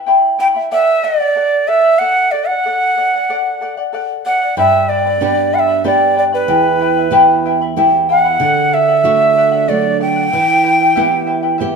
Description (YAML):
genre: andean folk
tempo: 94 BPM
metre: 3/4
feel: straight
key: unclear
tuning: A4 = 440 Hz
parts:
  - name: charango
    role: accompaniment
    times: 0.0-11.8 s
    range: E4 to B5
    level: -16 LUFS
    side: left 3 dB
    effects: none
  - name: breathy quena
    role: melody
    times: 0.4-11.6 s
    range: B4 to G5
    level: -13 LUFS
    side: right 2 dB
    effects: none
  - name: flamenco guitar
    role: accompaniment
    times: 4.6-11.8 s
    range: E2 to G4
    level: -19 LUFS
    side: right 6 dB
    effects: none
room: wet stone room reverb, RT60 1.1 s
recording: band playing live in one room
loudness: -11 LUFS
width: side -5 dB against mid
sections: 0.0-11.8 A section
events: none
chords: 0.0 Em; 0.7 D; 4.6 G; 6.5 Em; 8.4 D; 10.3 Em